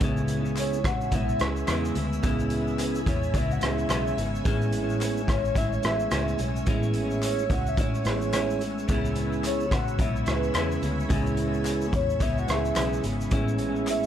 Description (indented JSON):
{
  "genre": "indie pop, bedroom pop",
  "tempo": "108 BPM",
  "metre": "4/4",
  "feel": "swing 60% on 16ths",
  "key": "unclear",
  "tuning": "A4 = 438 Hz",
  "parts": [
    { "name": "clean electric guitar", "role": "accompaniment", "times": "0.0-14.1 s", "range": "A2 to E4", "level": "-31 LUFS", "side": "left 3 dB", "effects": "lush chorus, warbly pitch drift, tape echo" },
    { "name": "mellow tonewheel organ", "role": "accompaniment", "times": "0.0-14.1 s", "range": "B3 to G#4", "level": "-32 LUFS", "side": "right 5 dB", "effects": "slow rotary speaker, cassette tape, tape echo" },
    { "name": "ensemble organ-string", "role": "sustained chords", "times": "0.0-14.1 s", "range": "C#5 to E6", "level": "-39 LUFS", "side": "right 1 dB", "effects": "ensemble chorus" },
    { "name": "vintage muted picked electric bass", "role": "bass", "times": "0.0-14.1 s", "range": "G#1 to E2", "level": "-31 LUFS", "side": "equal", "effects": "none" },
    { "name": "raw garage drum kit", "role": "drums", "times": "0.0-14.1 s", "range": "hi-hat, kick drum, rim click, shaker", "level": "-28 LUFS", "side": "equal", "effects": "none" },
    { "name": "soft octave-layered synth lead", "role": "melody", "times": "0.6-14.1 s", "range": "B4 to F#5", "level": "-31 LUFS", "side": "equal", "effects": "phaser, lush chorus, tape echo" },
    { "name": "group handclap", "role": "percussion", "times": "0.6-14.0 s", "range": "none", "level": "-44 LUFS", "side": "left 6 dB", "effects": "none" }
  ],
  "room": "light reverb, studio reverb",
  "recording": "echo-heavy mix",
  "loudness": "-24 LUFS",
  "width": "side -10 dB against mid",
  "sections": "0.0-14.1 A section",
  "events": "none",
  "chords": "0.0 C#m7; 4.4 Amaj7; 8.9 C#m7; 13.3 Amaj7"
}